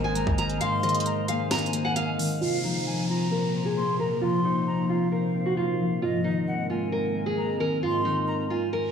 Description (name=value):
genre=hip hop, trap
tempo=133 BPM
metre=4/4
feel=half-time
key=unclear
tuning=A4 = 439 Hz
part: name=nylon-string guitar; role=melody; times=0.0-8.9 s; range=Eb4 to Bb5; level=-28 LUFS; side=right 2 dB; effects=low-pass filter, diffuse ambient delay
part: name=hollow concert flute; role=second line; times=0.0-8.9 s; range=Eb5 to C6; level=-32 LUFS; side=left 2 dB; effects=diffuse ambient delay
part: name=concert harp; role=accompaniment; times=0.0-8.9 s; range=Ab2 to C5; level=-28 LUFS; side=left 2 dB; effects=low-pass filter
part: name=warbly tape-like pad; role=sustained chords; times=0.0-8.9 s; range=Ab2 to C5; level=-33 LUFS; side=right 1 dB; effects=chorus, built-in reverb, low-pass filter
part: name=warm 808-style bass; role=bass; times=0.0-0.6 s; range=Ab1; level=-31 LUFS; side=equal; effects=none
part: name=trap drum kit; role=drums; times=0.2-2.3 s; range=hi-hat, kick drum, snare drum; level=-31 LUFS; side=right 1 dB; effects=none
part: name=downlifter and reverse cymbal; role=sound effects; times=2.4-8.9 s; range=none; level=-37 LUFS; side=equal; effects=none
room=wet plate reverb, RT60 1.7 s, studio reverb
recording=dreamy mix soaked in reverb, small room ambience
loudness=-24 LUFS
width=side -7 dB against mid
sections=0.0-2.4 A section; 2.4-8.9 B section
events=kick muted 0.6-2.4; filter sweep 2.4-8.9; reverse cymbal 8.8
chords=0.0 Abadd9; 2.4 Bbsus2; 6.0 Abadd9